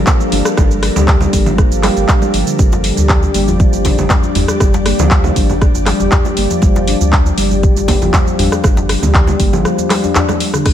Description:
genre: afro house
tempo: 119 BPM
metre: 4/4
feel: straight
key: G minor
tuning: A4 = 440 Hz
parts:
  - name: ethereal airy pad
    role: sustained chords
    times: 0.0-10.6 s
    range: G3 to D5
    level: -23 LUFS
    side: left 1 dB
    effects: ensemble chorus, built-in reverb, sidechain pumping
  - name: handpan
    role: arpeggios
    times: 0.0-10.6 s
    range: D3 to G4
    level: -17 LUFS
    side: left 2 dB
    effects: sidechain pumping, dub echo
  - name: warm sub bass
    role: bass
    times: 0.0-10.7 s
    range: G1 to D2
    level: -17 LUFS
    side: equal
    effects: sidechain pumping
  - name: electronic kick drum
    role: drums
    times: 0.1-10.7 s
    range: none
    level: -12 LUFS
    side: equal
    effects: none
  - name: house drum kit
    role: drums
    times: 0.1-10.7 s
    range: crash cymbal, handclaps, hi-hat, rim click, shaker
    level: -18 LUFS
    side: equal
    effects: none
  - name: congas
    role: percussion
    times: 0.3-10.4 s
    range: none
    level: -22 LUFS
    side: right 4 dB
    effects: none
  - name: djembe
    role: percussion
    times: 2.7-10.6 s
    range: none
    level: -23 LUFS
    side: left 1 dB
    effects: none
room: digital ambience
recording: none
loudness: -10 LUFS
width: side -10 dB against mid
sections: 0.0-10.7 A section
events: drop 0.0-10.7; drum fill 10.2-10.7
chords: 0.0 Gmadd9

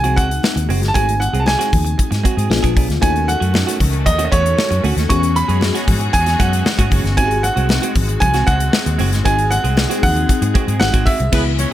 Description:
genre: polished 1980s jazz-funk pop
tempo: 116 BPM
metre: 4/4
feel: straight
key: unclear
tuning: A4 = 440 Hz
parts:
  - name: clear baby grand piano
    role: melody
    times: 0.0-11.7 s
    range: C#5 to C#6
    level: -20 LUFS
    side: right 2 dB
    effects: none
  - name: FM electric piano with soft pad layer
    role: accompaniment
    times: 0.0-11.7 s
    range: A3 to A4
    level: -24 LUFS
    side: left 5 dB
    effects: phaser, analog chorus
  - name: clean electric guitar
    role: riff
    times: 0.0-11.6 s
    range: G#3 to G#4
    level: -24 LUFS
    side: right 8 dB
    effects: wide subtle chorus
  - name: vintage muted fingered electric bass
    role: bass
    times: 0.0-11.6 s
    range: F#1 to G#2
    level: -18 LUFS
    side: equal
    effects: none
  - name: modern studio drum kit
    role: drums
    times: 0.0-11.7 s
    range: crash cymbal, hi-hat, kick drum, snare drum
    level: -18 LUFS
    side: equal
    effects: none
  - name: congas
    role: percussion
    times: 0.4-11.7 s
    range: none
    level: -30 LUFS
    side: left 3 dB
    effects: none
  - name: clear studio string section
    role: sustained chords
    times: 3.0-11.7 s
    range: C#3 to G#4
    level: -27 LUFS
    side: left 3 dB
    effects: none
  - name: warm horn section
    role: second line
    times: 11.3-11.7 s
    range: B3 to C#5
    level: -24 LUFS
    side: left 1 dB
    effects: none
room: small room ambience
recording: none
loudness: -13 LUFS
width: side -13 dB against mid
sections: 0.0-11.3 A section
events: none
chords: 0.0 G#7; 2.5 A#7b9; 3.0 D#m7b5; 5.1 E69; 7.2 G#7

